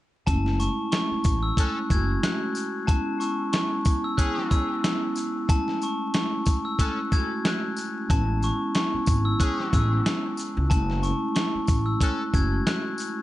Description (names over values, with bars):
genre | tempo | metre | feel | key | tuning
hip hop, boom-bap hip-hop | 92 BPM | 4/4 | swing 58% on 16ths | F# minor | A4 = 438 Hz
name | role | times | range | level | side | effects
glockenspiel with hard plastic mallets | melody | 0.3-13.0 s | A5 to G#6 | -30 LUFS | left 3 dB | high-pass filter, low-pass filter, analog delay
vibraphone with soft mallets | accompaniment | 0.3-13.2 s | G#3 to F#4 | -29 LUFS | right 1 dB | cassette tape, high-pass filter, low-pass filter, analog delay
upright bass | bass | 0.3-2.1, 8.1-12.6 s | F#1 to C#2 | -25 LUFS | equal | none
dusty soul sampler-style drum kit | drums | 0.3-13.2 s | hi-hat, kick drum, shaker, snare drum | -24 LUFS | equal | none
tambourine | percussion | 0.6-13.2 s | none | -44 LUFS | left 4 dB | analog delay
bright trumpet section | stabs | 1.6-12.2 s | C#4 to A4 | -36 LUFS | left 1 dB | high-pass filter, low-pass filter, analog delay
room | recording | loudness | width
light reverb, studio reverb | echo-heavy mix, vinyl crackle, nothing above 10.5 kHz | -22 LUFS | side -15 dB against mid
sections
0.3-13.2 A section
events
none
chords
0.3 F#m9; 2.9 Amaj9/G# (rootless); 5.5 F#m9; 8.1 Amaj7; 10.7 F#m9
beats
| 0.27 0.92 1.58 2.23 | 2.88 3.53 4.18 4.84 | 5.49 6.14 6.79 7.45 | 8.10 8.75 9.40 10.05 | 10.71 11.36 12.01 12.66